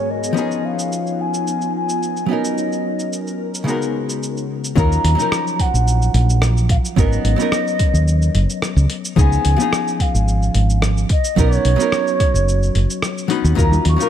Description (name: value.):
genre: sunset chillout.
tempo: 109 BPM.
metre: 4/4.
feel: straight.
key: Eb minor.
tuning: A4 = 440 Hz.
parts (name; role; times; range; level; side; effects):
mellow hollow baroque flute; melody; 0.0-14.1 s; C#5 to Db6; -23 LUFS; equal; tape echo.
archtop guitar, miked and amplified; accompaniment; 0.0-14.1 s; Ab2 to B4; -22 LUFS; moving between left 8 dB and right 8 dB; auto-pan.
ethereal airy pad; sustained chords; 0.0-4.8 s; Cb4 to Db5; -28 LUFS; equal; ensemble chorus, built-in reverb.
dusty soul sampler-style drum kit; drums; 0.2-14.1 s; hi-hat, rim click, shaker; -26 LUFS; equal; none.
woody fretless electric bass; bass; 4.8-14.0 s; Gb1 to Eb2; -15 LUFS; equal; none.
electronic kick drum; drums; 4.8-13.7 s; none; -17 LUFS; equal; none.
congas; percussion; 13.7-13.8 s; none; -26 LUFS; right 3 dB; none.
room: light reverb, digital ambience.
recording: none.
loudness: -15 LUFS.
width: side -10 dB against mid.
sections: 0.0-4.8 A section; 4.8-14.1 B section.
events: filter sweep on ambient pad 0.0-4.8.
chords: 0.4 Db9; 2.3 Bmaj9; 3.7 Db13sus4; 4.8 Ebm9; 7.0 Abm11; 9.2 Db9; 11.1 Bmaj9; 13.6 Ebm9.